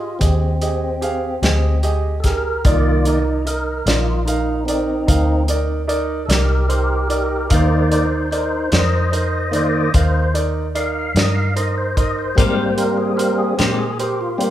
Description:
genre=slow blues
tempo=49 BPM (dotted quarters)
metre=12/8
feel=straight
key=C minor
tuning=A4 = 439 Hz
part: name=clear upright piano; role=accompaniment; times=0.0-14.5 s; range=Eb4 to F5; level=-23 LUFS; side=right 3 dB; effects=none
part: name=tonewheel organ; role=sustained chords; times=0.0-14.5 s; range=Eb3 to F5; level=-21 LUFS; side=left 1 dB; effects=overdrive, chorus vibrato, slow rotary speaker
part: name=vintage muted fingered electric bass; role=bass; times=0.0-14.5 s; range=Bb1 to Bb2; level=-20 LUFS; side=equal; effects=none
part: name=warm soul drum kit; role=drums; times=0.2-14.5 s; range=hi-hat, kick drum, snare drum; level=-19 LUFS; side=equal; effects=none
part: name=clean electric guitar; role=accompaniment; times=12.4-13.8 s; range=Ab3 to G4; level=-25 LUFS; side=left 6 dB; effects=tremolo
room=moderate recital hall reverb, RT60 1.4 s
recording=recorded in a church or concert hall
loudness=-16 LUFS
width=side -12 dB against mid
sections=0.0-14.5 A section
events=tonewheel organ solo 0.0-14.5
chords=0.0 Fm7; 2.6 Cm7; 12.4 Abmaj7

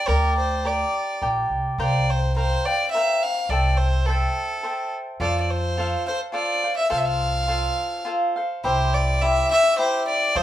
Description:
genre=mexican folk, mariachi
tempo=105 BPM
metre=3/4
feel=straight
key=unclear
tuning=A4 = 439 Hz
part: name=clear violin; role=melody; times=0.0-10.4 s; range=A4 to F5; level=-23 LUFS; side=left 1 dB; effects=none
part: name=cavaquinho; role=accompaniment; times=0.0-10.4 s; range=E4 to G5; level=-25 LUFS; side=equal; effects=none
part: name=upright bass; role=bass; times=0.1-10.4 s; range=Bb1 to F2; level=-23 LUFS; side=equal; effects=none
room=moderate studio reverb, RT60 0.5 s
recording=band playing live in one room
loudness=-20 LUFS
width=side -12 dB against mid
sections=0.0-8.6 A section; 8.6-10.4 B section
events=none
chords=0.0 Gm; 1.8 C7sus4; 3.5 C6; 5.2 F; 8.6 C

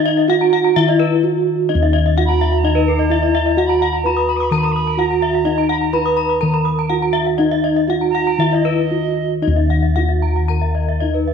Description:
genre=Balinese gamelan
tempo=114-128 BPM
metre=4/4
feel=straight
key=Eb pelog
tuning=A4 = 440 Hz
part: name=gamelan-type bronze metallophone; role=melody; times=0.0-11.3 s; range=Eb4 to Cb5-20c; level=-18 LUFS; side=right 1 dB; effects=none
part: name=gamelan-type bronze metallophone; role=arpeggios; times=0.0-11.3 s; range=Cb5-20c to Eb6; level=-24 LUFS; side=right 8 dB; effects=none
part: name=gamelan-type bossed gongs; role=bass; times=0.0-11.3 s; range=Eb2 to Gb4-30c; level=-18 LUFS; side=left 1 dB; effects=none
part: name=gamelan-type bronze metallophone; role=arpeggios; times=0.1-11.1 s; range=Bb4-30c to Eb6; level=-22 LUFS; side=left 11 dB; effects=none
part: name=alto recorder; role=second line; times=2.2-9.3 s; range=Eb5 to Eb6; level=-26 LUFS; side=right 8 dB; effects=none
room=moderate echo chamber reverb, RT60 2.1 s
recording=1960s-style stereo with parts hard left and right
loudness=-14 LUFS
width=side -6 dB against mid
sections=0.0-9.4 A section; 9.4-11.3 B section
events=break 1.0-1.7, 8.7-9.4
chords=none

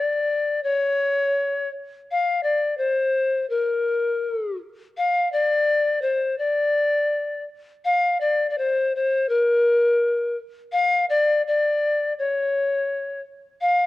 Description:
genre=andean folk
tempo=84 BPM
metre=2/4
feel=straight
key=unclear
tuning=A4 = 444 Hz
part: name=bright reedy polished pan flute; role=solo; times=0.0-13.9 s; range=Bb4 to F5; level=-20 LUFS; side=left 2 dB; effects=cassette tape
room=moderate spring reverb, RT60 1.6 s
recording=home recording on cassette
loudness=-20 LUFS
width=side -16 dB against mid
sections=0.0-7.8 A section; 7.8-13.9 A section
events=none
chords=none

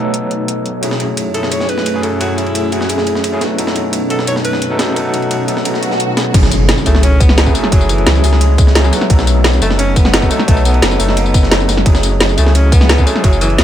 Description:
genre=liquid drum and bass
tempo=174 BPM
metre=4/4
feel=straight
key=F# dorian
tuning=A4 = 441 Hz
part: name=overdriven tine electric piano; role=accompaniment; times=0.0-13.6 s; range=F#3 to B4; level=-19 LUFS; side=left 1 dB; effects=fast tremolo, tape echo
part: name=ethereal airy pad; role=sustained chords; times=0.0-13.6 s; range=F#2 to G#5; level=-21 LUFS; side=equal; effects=ensemble chorus, built-in reverb
part: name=drum and bass drum kit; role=drums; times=0.1-13.6 s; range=crash cymbal, hi-hat, snare drum, tambourine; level=-18 LUFS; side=equal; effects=none
part: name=breakbeat sampler-style drum kit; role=drums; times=0.8-13.6 s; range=ride cymbal, snare drum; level=-20 LUFS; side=equal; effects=high-pass filter on cymbals, high-pass filter on snare, high-pass filter on room
part: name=clear alto saxophone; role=melody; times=1.3-13.6 s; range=E3 to C#5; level=-21 LUFS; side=equal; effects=tape echo
part: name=swell and impact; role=sound effects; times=5.8-7.7 s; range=none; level=-19 LUFS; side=equal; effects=none
part: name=warm sub bass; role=bass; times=6.3-13.6 s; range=F#1 to C#2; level=-13 LUFS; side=equal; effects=none
part: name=electronic kick drum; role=drums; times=6.3-13.3 s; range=none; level=-11 LUFS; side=equal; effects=none
room=little or no reverb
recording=none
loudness=-10 LUFS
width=side -11 dB against mid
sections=0.0-6.3 A section; 6.3-13.6 B section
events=filter sweep on ambient pad 0.0-6.3; swell 5.8-6.3; drop 6.3-13.6; impact 6.3-7.7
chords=0.0 B7; 0.8 F#m9; 3.4 B7; 6.3 F#m9; 8.9 B7; 11.9 F#m9

